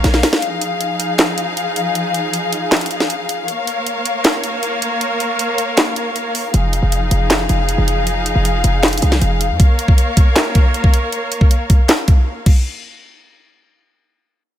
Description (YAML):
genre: hip hop, trap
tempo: 157 BPM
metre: 4/4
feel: half-time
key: unclear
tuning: A4 = 440 Hz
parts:
  - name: bright studio string section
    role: sustained chords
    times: 0.0-12.4 s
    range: F3 to F5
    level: -19 LUFS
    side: left 1 dB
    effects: none
  - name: short 808-style bass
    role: bass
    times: 0.0-0.2, 6.5-9.6 s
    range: F1 to F2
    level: -16 LUFS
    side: equal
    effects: none
  - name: trap drum kit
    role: drums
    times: 0.0-12.6 s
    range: crash cymbal, handclaps, hi-hat, kick drum, snare drum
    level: -14 LUFS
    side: equal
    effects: none
room: little or no reverb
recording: none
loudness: -14 LUFS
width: side -11 dB against mid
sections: 0.0-12.7 A section; 12.7-14.6 B section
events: drum fill 0.0-0.4; break 0.4-6.5; kick muted 5.0-6.5; silent gap 12.3-12.7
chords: 0.4 Fm7; 3.5 Bbm; 6.5 Fm7; 9.6 Bbm; 12.5 N.C.